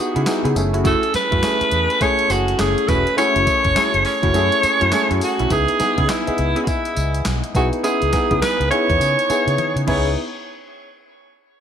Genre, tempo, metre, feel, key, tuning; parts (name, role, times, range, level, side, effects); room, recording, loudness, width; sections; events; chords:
R&B, new jack swing; 103 BPM; 4/4; swing 62% on 16ths; C# minor; A4 = 441 Hz
raspy alto saxophone; melody; 0.0-10.2 s; D#4 to C#5; -19 LUFS; equal
warm grand piano; accompaniment; 0.0-10.2 s; A3 to D#5; -23 LUFS; equal
funky polysynth comp; stabs; 0.2-10.1 s; A3 to G#4; -26 LUFS; equal; chorus
vintage muted fingered electric bass; bass; 0.2-10.1 s; E1 to C#3; -22 LUFS; equal
crisp 8-bit digital drum machine; drums; 0.2-10.0 s; crash cymbal, handclaps, hi-hat, kick drum, snare drum, tambourine, toms; -25 LUFS; equal
light reverb, digital ambience; -16 LUFS; side -8 dB against mid
0.0-5.5 A section; 5.5-10.2 B section; 10.2-11.6 C section
drum fill 9.6-10.2
0.0 C#m7; 0.6 F#m7; 5.5 C#m7; 10.2 N.C.